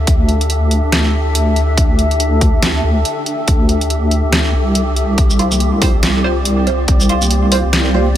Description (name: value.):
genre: deep dubstep.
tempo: 141 BPM.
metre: 4/4.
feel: swing 59% on 16ths, half-time.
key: unclear.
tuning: A4 = 440 Hz.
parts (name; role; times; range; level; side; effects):
granular cloud pad; sustained chords; 0.0-8.2 s; C4 to E5; -21 LUFS; left 2 dB; built-in reverb.
deep soft wobble bass; bass; 0.0-8.2 s; C2 to D2; -15 LUFS; equal; chorus.
wind-like tuned noise texture; texture; 0.0-8.2 s; G4; -26 LUFS; right 1 dB; built-in reverb.
dubstep drum kit; drums; 0.1-7.8 s; hi-hat, shaker, snare drum; -19 LUFS; equal; overdrive.
electronic kick drum; drums; 0.1-7.0 s; none; -14 LUFS; equal; overdrive.
filtered dub chord stab; stabs; 5.4-8.1 s; G3 to C5; -20 LUFS; right 3 dB; phaser, lush chorus, dub echo.
congas; percussion; 5.5-8.1 s; none; -23 LUFS; left 1 dB; dub echo.
room: little or no reverb.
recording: none.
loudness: -12 LUFS.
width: side -11 dB against mid.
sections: 0.0-8.2 A section.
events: none.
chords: 0.0 D5; 5.2 Csus4.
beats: | 0.07 0.50 0.92 1.35 | 1.77 2.20 2.63 3.05 | 3.48 3.90 4.33 4.75 | 5.18 5.61 6.03 6.46 | 6.88 7.31 7.73 8.16.